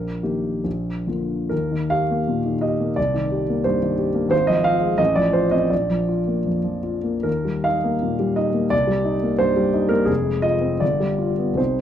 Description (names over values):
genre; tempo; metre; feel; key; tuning
classical, romantic character piece for solo piano; 69-91 BPM; 2/4; rubato; Eb major; A4 = 439 Hz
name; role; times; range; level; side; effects
warm grand piano; solo; 0.0-11.8 s; F1 to F5; -19 LUFS; equal; none
room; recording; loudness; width
light reverb; dark, warm production; -19 LUFS; side -10 dB against mid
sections
0.0-1.5 A section; 1.5-11.8 A section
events
none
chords
0.0 Eb/Bb; 0.6 Bb; 1.5 Eb; 3.0 Cm7; 4.3 Fm/Ab; 5.0 F/A; 5.7 Bb; 7.3 Eb; 8.7 Cm7; 10.1 Fm; 10.8 G7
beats
0.65 | 1.51 2.27 | 2.97 3.65 | 4.32 4.99 | 5.71 6.47 | 7.26 8.03 | 8.72 9.41 | 10.09 10.81 | 11.59